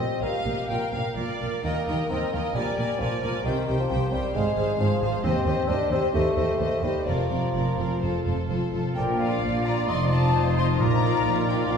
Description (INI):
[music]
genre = quick classical-period movement for symphony orchestra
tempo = 125-136 BPM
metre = 4/4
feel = rubato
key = Eb major, Bb major from 5.2 s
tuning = A4 = 440 Hz
[part]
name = clear symphonic violin section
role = melody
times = 0.0-11.8 s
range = C5 to C6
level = -37 LUFS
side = left 5 dB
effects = none
[part]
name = clear chamber violin section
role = second line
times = 0.0-11.8 s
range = F4 to G5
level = -32 LUFS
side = left 1 dB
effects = none
[part]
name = mellow bassoon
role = accompaniment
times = 0.0-11.8 s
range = Eb3 to D4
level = -29 LUFS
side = left 1 dB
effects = none
[part]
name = rich symphonic viola section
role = accompaniment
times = 0.0-11.8 s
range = F4 to D5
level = -32 LUFS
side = right 1 dB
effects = none
[part]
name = clear chamber double bass section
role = bass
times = 0.0-11.8 s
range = F1 to Eb2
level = -29 LUFS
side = right 1 dB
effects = none
[part]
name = warm chamber cello section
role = bass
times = 0.0-11.8 s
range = Eb2 to Eb3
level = -29 LUFS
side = right 1 dB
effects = none
[part]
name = flute section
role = second line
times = 9.0-11.8 s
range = F5 to C6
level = -28 LUFS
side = left 4 dB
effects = none
[part]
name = warm clarinet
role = second line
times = 9.0-11.8 s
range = F4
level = -33 LUFS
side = right 2 dB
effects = none
[part]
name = warm oboe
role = second line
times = 9.0-11.8 s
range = D5 to Eb5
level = -34 LUFS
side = right 2 dB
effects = none
[part]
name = mellow French horn section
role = sustained chords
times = 9.0-11.8 s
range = F3 to Eb4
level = -31 LUFS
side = left 7 dB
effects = none
[part]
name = timpani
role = percussion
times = 10.8-11.4 s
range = Bb2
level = -27 LUFS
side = right 2 dB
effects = none
[sound]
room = wet concert hall reverb, RT60 2.1 s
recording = heard from further back in the room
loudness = -22 LUFS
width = side -6 dB against mid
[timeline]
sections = 0.0-9.0 A section; 9.0-11.8 B section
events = none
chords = 0.0 Eb; 0.7 Bb; 1.6 Eb; 2.5 Bb7; 3.5 C5; 4.3 Fm/Ab; 5.2 Cm/Eb; 7.1 Bb/F; 9.0 Bb; 9.9 F7; 10.8 Bb